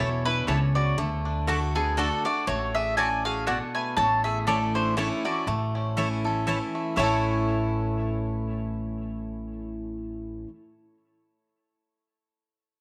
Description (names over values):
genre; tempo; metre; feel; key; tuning
bluegrass; 120 BPM; 3/4; swing 55% on 8ths; A major; A4 = 440 Hz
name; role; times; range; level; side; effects
mandolin; melody; 0.0-10.4 s; G#4 to A5; -31 LUFS; equal; tape echo
lap resonator guitar; second line; 0.0-10.4 s; B3 to D5; -39 LUFS; equal; none
picked steel-string acoustic guitar; accompaniment; 0.0-10.5 s; E2 to F#4; -34 LUFS; equal; none
bluegrass banjo; arpeggios; 0.0-10.5 s; E3 to A4; -34 LUFS; equal; none
mandolin; stabs; 0.0-10.5 s; A3 to A5; -36 LUFS; equal; tape echo
upright bass; bass; 0.0-10.4 s; A1 to D2; -32 LUFS; equal; none
room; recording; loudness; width
light reverb, small room reverb; none; -27 LUFS; mono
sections
0.0-7.0 A section; 7.0-10.0 B section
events
none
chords
0.0 A; 1.0 D; 4.0 A